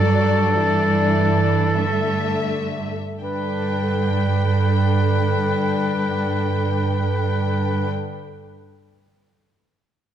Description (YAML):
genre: classical, slow romantic movement for symphony orchestra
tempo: 39-57 BPM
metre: 3/4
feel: rubato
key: G major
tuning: A4 = 441 Hz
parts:
  - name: rich studio violin section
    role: melody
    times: 0.0-7.9 s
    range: D5 to G5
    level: -30 LUFS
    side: left 5 dB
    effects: none
  - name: rich studio violin section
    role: second line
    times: 0.0-7.9 s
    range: A3 to D4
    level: -30 LUFS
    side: left 5 dB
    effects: none
  - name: warm oboe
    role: second line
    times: 0.0-7.9 s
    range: A4 to B4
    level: -24 LUFS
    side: equal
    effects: none
  - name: warm studio viola section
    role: accompaniment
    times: 0.0-7.9 s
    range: D3 to F#3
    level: -27 LUFS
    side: equal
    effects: none
  - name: clear studio cello section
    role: bass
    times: 0.0-7.9 s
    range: G2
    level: -21 LUFS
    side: right 2 dB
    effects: none
room: moderate scoring stage reverb, RT60 1.8 s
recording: dark, warm production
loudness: -18 LUFS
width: side -10 dB against mid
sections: 0.0-3.2 A section; 3.2-7.1 B section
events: slowing down 0.0-3.2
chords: 0.0 D/G; 3.2 G